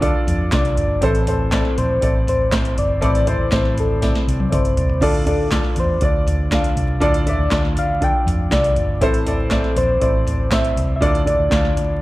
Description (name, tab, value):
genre	piano-driven pop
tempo	120 BPM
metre	4/4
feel	straight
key	D minor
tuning	A4 = 440 Hz
part	soft struck synth lead	melody	0.0-12.0 s	A4 to G5	-22 LUFS	left 1 dB	chorus
part	warm baby grand piano	accompaniment	0.0-12.0 s	A2 to F5	-22 LUFS	right 1 dB	none
part	vintage muted fingered electric bass	bass	0.0-12.0 s	G1 to F2	-22 LUFS	equal	none
part	booming analog drum machine	drums	0.0-11.9 s	crash cymbal, handclaps, hi-hat, kick drum, snare drum, toms	-20 LUFS	equal	overdrive
room	light reverb, digital ambience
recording	dark, warm production, vinyl crackle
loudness	-16 LUFS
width	side -17 dB against mid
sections	0.0-12.0 A section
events	drum fill 4.0-5.0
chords	0.0 Dm; 1.0 Am; 5.0 Dm; 9.0 Am; 11.0 Dm